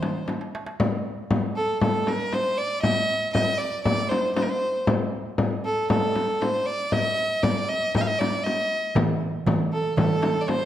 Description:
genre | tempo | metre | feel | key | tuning
Arabic maqam ensemble | 118 BPM | 4/4 | straight | C maqam rast | A4 = 439 Hz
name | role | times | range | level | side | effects
clear violin | melody | 0.0-10.7 s | A4 to F5 | -25 LUFS | right 1 dB | none
darbuka | percussion | 0.0-0.8, 9.0-10.6 s | none | -27 LUFS | right 3 dB | none
frame drum | percussion | 0.0-10.6 s | none | -25 LUFS | left 2 dB | none
room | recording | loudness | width
moderate recital hall reverb, RT60 1.5 s | dark, warm production | -22 LUFS | side -11 dB against mid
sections
0.8-10.7 A section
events
drum fill 0.3-0.8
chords
none

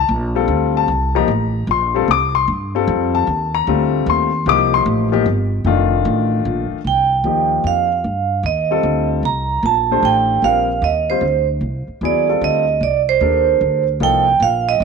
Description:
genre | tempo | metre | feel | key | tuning
jazz | 151 BPM | 3/4 | swing 66% on 8ths | C dorian | A4 = 443 Hz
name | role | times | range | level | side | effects
warm concert grand piano | accompaniment | 0.0-14.3 s | Eb3 to D6 | -18 LUFS | left 10 dB | none
upright bass | bass | 0.0-14.8 s | F1 to G2 | -20 LUFS | right 1 dB | none
vibraphone with medium hard mallets | melody | 6.9-14.8 s | C5 to Bb5 | -16 LUFS | right 8 dB | none
room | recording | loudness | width
moderate echo chamber reverb, RT60 1.7 s | 1960s-style stereo with parts hard left and right | -14 LUFS | side -5 dB against mid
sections
0.0-6.9 A section; 6.9-14.8 B section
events
none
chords
0.0 Cm69; 4.5 Fsus4; 6.9 Cm69; 9.2 Fsus4; 11.6 Cm69; 14.0 Fsus4

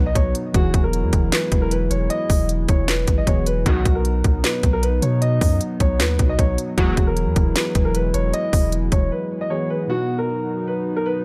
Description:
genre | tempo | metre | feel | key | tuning
hip hop, trap | 154 BPM | 4/4 | half-time | B major | A4 = 437 Hz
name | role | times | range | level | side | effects
dark concert grand piano | melody | 0.0-11.2 s | F#4 to D#5 | -27 LUFS | equal | low-pass filter, delay
warbly lo-fi synth keys | accompaniment | 0.0-11.2 s | B2 to G#4 | -31 LUFS | equal | chorus, low-pass filter
dark analog pad | sustained chords | 0.0-11.2 s | F#3 to E4 | -31 LUFS | equal | subtle chorus
long sustained 808-style bass | bass | 0.0-9.1 s | E1 to B2 | -24 LUFS | equal | none
trap drum kit | drums | 0.2-9.0 s | handclaps, hi-hat, kick drum, snare drum | -22 LUFS | equal | none
sync-sweep polysynth | stabs | 3.7-3.8, 6.8-6.9 s | F#2 to F#3 | -30 LUFS | equal | chorus
room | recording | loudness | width
digital ambience | none | -20 LUFS | mono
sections
0.0-9.9 A section; 9.9-11.2 A section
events
break 9.1-9.9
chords
0.0 B; 0.5 Eadd9; 3.7 B; 6.8 Eadd9; 9.9 B

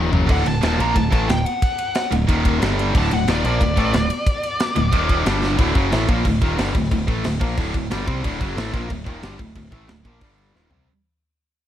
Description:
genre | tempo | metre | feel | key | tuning
heavy metal | 181 BPM | 4/4 | straight | D phrygian dominant | A4 = 440 Hz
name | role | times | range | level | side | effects
high-gain distorted guitar | riff | 0.0-10.9 s | D2 to C4 | -27 LUFS | left 1 dB | distortion
sludgy distorted guitar | riff | 0.0-10.9 s | D2 to C4 | -26 LUFS | left 8 dB | overdrive
growling picked electric bass | bass | 0.0-10.9 s | D1 to C2 | -24 LUFS | equal | overdrive
tight metal drum kit | drums | 0.1-10.8 s | crash cymbal, kick drum, ride cymbal, snare drum, toms | -22 LUFS | equal | none
high-gain lead guitar | melody | 0.3-5.2 s | D5 to Bb5 | -25 LUFS | equal | distortion, analog delay
heavy high-gain guitar | riff | 0.3-10.9 s | D2 to C4 | -25 LUFS | right 6 dB | distortion
room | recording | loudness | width
little or no reverb | vinyl crackle | -17 LUFS | side -11 dB against mid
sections
0.0-5.6 A section; 5.6-10.9 B section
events
drum fill 0.0, 5.4, 10.5-10.9; fade-out 5.6-10.9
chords
0.0 D; 2.3 Eb5; 2.6 G5; 2.9 D5; 4.9 Eb5; 5.3 G5; 5.6 D; 10.2 G5; 10.5 Eb6

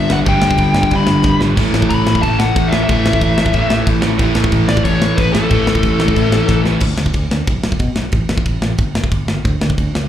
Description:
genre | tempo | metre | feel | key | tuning
punk rock | 183 BPM | 4/4 | straight | unclear | A4 = 441 Hz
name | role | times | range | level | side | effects
dark smooth lead guitar | melody | 0.0-6.6 s | A4 to B5 | -19 LUFS | left 3 dB | overdrive, slapback echo, ping-pong delay
biting overdriven guitar | riff | 0.0-6.8 s | G2 to D4 | -20 LUFS | left 7 dB | slapback echo
fuzz guitar | riff | 0.0-6.8 s | G2 to D4 | -20 LUFS | equal | distortion, slapback echo
overdriven semi-hollow guitar | riff | 0.0-6.8 s | G2 to D4 | -20 LUFS | right 9 dB | slapback echo
picked electric bass | bass | 0.0-10.0 s | G1 to B2 | -19 LUFS | equal | none
tight metal drum kit | drums | 0.1-10.0 s | crash cymbal, kick drum, snare drum, splash cymbal | -18 LUFS | equal | none
room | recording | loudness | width
little or no reverb | live gig heard through the venue's PA, club reverb | -12 LUFS | side -10 dB against mid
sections
0.0-6.8 A section; 6.8-10.1 B section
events
drum fill 1.2-1.6, 6.5-6.8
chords
0.0 G; 1.6 A5; 6.8 N.C.

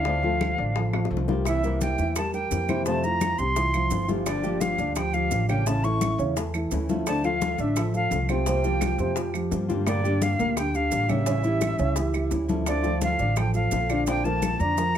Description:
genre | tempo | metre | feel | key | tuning
latin, Cuban son and guajira | 171 BPM | 4/4 | straight | D minor | A4 = 439 Hz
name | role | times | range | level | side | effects
jazz flute | melody | 0.0-15.0 s | D5 to C#6 | -28 LUFS | right 1 dB | none
nylon-string guitar | accompaniment | 0.0-14.8 s | C3 to G4 | -31 LUFS | left 4 dB | none
dark grand piano | arpeggios | 0.0-15.0 s | Bb2 to E5 | -28 LUFS | right 1 dB | none
upright bass | bass | 0.0-15.0 s | G1 to G2 | -28 LUFS | right 1 dB | none
bongos | percussion | 0.1-15.0 s | none | -36 LUFS | left 8 dB | none
congas | percussion | 0.1-15.0 s | none | -34 LUFS | left 5 dB | none
claves | percussion | 0.4-15.0 s | none | -38 LUFS | right 7 dB | none
maracas | percussion | 1.5-15.0 s | none | -39 LUFS | right 8 dB | none
room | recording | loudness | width
light reverb | close, detailed microphones | -22 LUFS | side -9 dB against mid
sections
0.0-12.7 A section; 12.7-15.0 A section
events
drum fill 0.9-1.5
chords
0.1 Dm7; 1.5 C7; 2.9 Fmaj7; 4.3 Gm7; 5.7 A; 7.1 Dm7; 8.5 C7sus4; 9.9 Gm; 11.3 A7; 12.7 Dm7; 14.1 Bbadd9

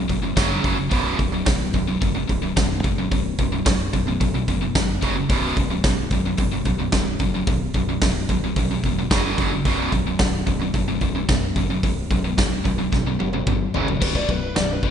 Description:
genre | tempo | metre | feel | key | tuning
heavy metal | 110 BPM | 4/4 | straight | unclear | A4 = 440 Hz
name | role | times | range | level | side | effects
distorted electric guitar | riff | 0.0-14.0 s | B1 to F#3 | -26 LUFS | right 11 dB | distortion
scooped high-gain guitar | riff | 0.0-14.9 s | B1 to F#3 | -26 LUFS | left 9 dB | distortion
growling fingered electric bass | bass | 0.0-14.9 s | B0 to B1 | -28 LUFS | equal | overdrive
big rock drum kit | drums | 0.1-14.9 s | crash cymbal, hi-hat, kick drum, snare drum, toms | -22 LUFS | equal | none
bluesy overdriven lead guitar | melody | 14.0-14.9 s | B4 to D5 | -27 LUFS | left 1 dB | distortion
room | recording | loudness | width
light reverb, studio ambience | rough home demo mix, nothing above 10.6 kHz | -19 LUFS | side -8 dB against mid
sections
0.0-14.0 A section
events
drum fill 12.9-14.0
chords
0.4 F#5; 0.9 B5; 5.0 F#5; 5.3 B5; 9.1 F#5; 9.7 B5; 13.7 F#5; 14.0 B5

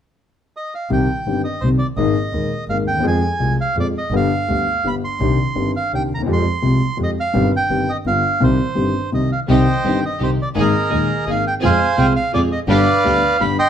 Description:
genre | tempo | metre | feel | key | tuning
tango | 168 BPM | 3/4 | rubato | C minor | A4 = 438 Hz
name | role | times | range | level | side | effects
bandoneon | melody | 0.6-13.7 s | Ab4 to C6 | -20 LUFS | right 2 dB | none
warm concert grand piano | accompaniment | 0.9-13.6 s | Eb1 to Ab4 | -18 LUFS | left 2 dB | none
warm double bass | bass | 0.9-13.6 s | G1 to F2 | -24 LUFS | right 2 dB | none
rich studio string section | stabs | 9.5-13.6 s | Bb3 to Ab4 | -25 LUFS | right 4 dB | none
room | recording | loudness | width
moderate studio reverb, RT60 0.9 s | band playing live in one room | -15 LUFS | side -9 dB against mid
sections
0.9-9.5 A section; 9.5-13.7 A section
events
none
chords
0.0 N.C.; 0.9 Cm; 2.0 Absus2; 3.0 Fm; 4.1 G; 5.2 Cmadd9; 6.3 Fmadd9; 7.4 Cm/G; 8.1 G7; 8.4 Cm; 10.6 Absus2; 11.6 Fm; 12.7 G

